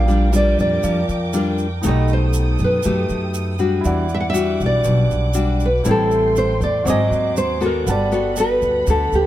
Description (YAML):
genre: bossa nova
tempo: 119 BPM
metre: 4/4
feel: straight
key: unclear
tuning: A4 = 440 Hz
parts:
  - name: nylon-string guitar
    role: melody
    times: 0.0-9.3 s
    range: G4 to F#5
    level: -20 LUFS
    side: right 1 dB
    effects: none
  - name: nylon-string guitar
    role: accompaniment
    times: 0.0-9.3 s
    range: Ab2 to A4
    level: -22 LUFS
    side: left 3 dB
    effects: none
  - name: warm concert grand piano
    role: accompaniment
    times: 0.0-9.3 s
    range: B3 to D6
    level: -30 LUFS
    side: right 4 dB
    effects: none
  - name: warm studio violin section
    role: sustained chords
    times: 0.0-9.3 s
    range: A4 to D#6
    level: -32 LUFS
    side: right 2 dB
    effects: none
  - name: upright bass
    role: bass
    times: 0.0-9.3 s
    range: G1 to F#2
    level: -20 LUFS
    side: equal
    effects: none
  - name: tube shaker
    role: percussion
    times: 0.1-9.3 s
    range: none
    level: -34 LUFS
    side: right 7 dB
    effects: none
room: little or no reverb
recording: none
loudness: -16 LUFS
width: side -13 dB against mid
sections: 0.0-9.3 A section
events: none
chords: 0.0 Bb6; 1.8 B7b13; 3.8 Em9; 5.9 Am7; 6.9 Ab7#11; 7.9 Gmaj9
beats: 0.32 0.82 1.33 | 1.83 2.33 2.83 3.34 | 3.84 4.34 4.85 5.35 | 5.85 6.36 6.86 7.36 | 7.86 8.37 8.87